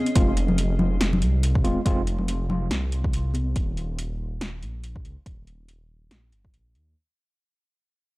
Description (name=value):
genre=deep dubstep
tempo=141 BPM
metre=4/4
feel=swing 57% on 16ths, half-time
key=F minor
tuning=A4 = 440 Hz
part: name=deep house drum kit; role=drums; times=0.1-6.8 s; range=hi-hat, snare drum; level=-30 LUFS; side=equal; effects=overdrive, studio reverb
part: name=tine electric piano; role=stabs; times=0.2-2.0 s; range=Ab3 to F4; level=-31 LUFS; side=equal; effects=fast stereo tremolo, dub echo
part: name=dark detuned saw bass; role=bass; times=0.2-6.9 s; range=Eb1 to Eb2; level=-25 LUFS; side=equal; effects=none
part: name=electronic kick drum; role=drums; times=0.2-6.5 s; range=none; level=-24 LUFS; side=equal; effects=overdrive, studio reverb
part: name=congas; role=percussion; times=0.5-3.4 s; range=none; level=-28 LUFS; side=left 1 dB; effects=none
room=little or no reverb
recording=dry, gritty hardware recording, transformer saturation, cassette tape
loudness=-22 LUFS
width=side -21 dB against mid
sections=0.2-7.0 A section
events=break 0.0; fade-out 0.2-7.0; filter sweep on detuned saw bass 0.2-7.0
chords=0.2 Fm; 3.6 Eb5